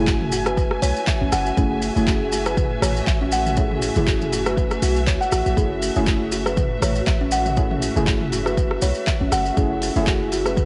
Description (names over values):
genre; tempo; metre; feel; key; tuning
afro house; 120 BPM; 4/4; swing 56% on 16ths; F# minor; A4 = 445 Hz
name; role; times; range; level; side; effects
dark studio string section; sustained chords; 0.0-10.7 s; A3 to G#5; -31 LUFS; equal; sidechain pumping, cassette tape
deep mellow chord stab; stabs; 0.0-10.7 s; A3 to G#4; -28 LUFS; equal; chorus, sidechain pumping, cassette tape, tape echo
warm 808-style bass; bass; 0.0-10.7 s; F#1 to C#2; -28 LUFS; equal; sidechain pumping
kalimba; arpeggios; 0.1-10.7 s; C#4 to F#5; -27 LUFS; equal; sidechain pumping, cassette tape, tape echo
deep house drum kit; drums; 0.1-10.7 s; handclaps, hi-hat, rim click, toms; -30 LUFS; equal; small room ambience
electronic kick drum; drums; 0.1-10.7 s; none; -24 LUFS; equal; small room ambience
maracas; percussion; 0.1-10.7 s; none; -34 LUFS; equal; none
room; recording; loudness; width
light reverb, small room reverb; home recording on cassette, nothing above 11.0 kHz; -21 LUFS; mono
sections
0.0-10.7 A section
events
none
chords
0.0 F#m9